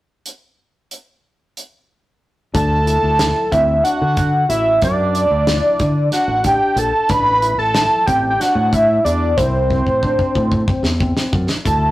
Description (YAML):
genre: progressive instrumental, band music in an uneven meter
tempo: 184 BPM (eighths)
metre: 7/8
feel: straight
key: D mixolydian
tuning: A4 = 440 Hz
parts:
  - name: damped 70s drum kit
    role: drums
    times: 0.3-11.8 s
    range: hi-hat, kick drum, snare drum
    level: -21 LUFS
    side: equal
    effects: none
  - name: fat analog lead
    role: melody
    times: 2.5-11.9 s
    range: C5 to B5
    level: -16 LUFS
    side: equal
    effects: phaser
  - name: overdriven tine electric piano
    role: arpeggios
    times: 2.5-11.9 s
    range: C4 to F#4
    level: -27 LUFS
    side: left 2 dB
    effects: none
  - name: modern bright fingered electric bass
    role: bass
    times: 2.5-11.9 s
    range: A1 to D3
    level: -20 LUFS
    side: equal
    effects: none
room: moderate stone room reverb, RT60 1.0 s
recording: rough rehearsal-room recording, warm saturation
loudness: -14 LUFS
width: side -16 dB against mid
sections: 0.3-2.5 A section; 2.5-11.7 B section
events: drum fill 9.7-11.7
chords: 0.3 N.C.; 2.5 Dadd9; 7.1 Am